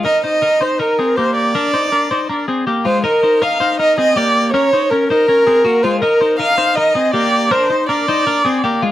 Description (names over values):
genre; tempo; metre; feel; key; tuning
indie pop; 161 BPM; 4/4; straight; Eb major; A4 = 438 Hz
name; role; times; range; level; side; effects
dark violin; melody; 0.0-8.8 s; Bb4 to F5; -14 LUFS; right 1 dB; slapback echo
twelve-string electric guitar; arpeggios; 0.0-8.9 s; Ab3 to C5; -17 LUFS; left 2 dB; none
room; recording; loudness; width
moderate booth ambience, RT60 0.3 s; dry, close 1970s-style studio recording; -12 LUFS; side -13 dB against mid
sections
0.0-3.0 A section; 3.0-8.9 B section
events
none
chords
0.0 Absus2/Eb; 1.4 Bbadd9; 3.0 Eb; 4.5 Gb; 6.0 Absus2/Eb; 7.3 Bbadd9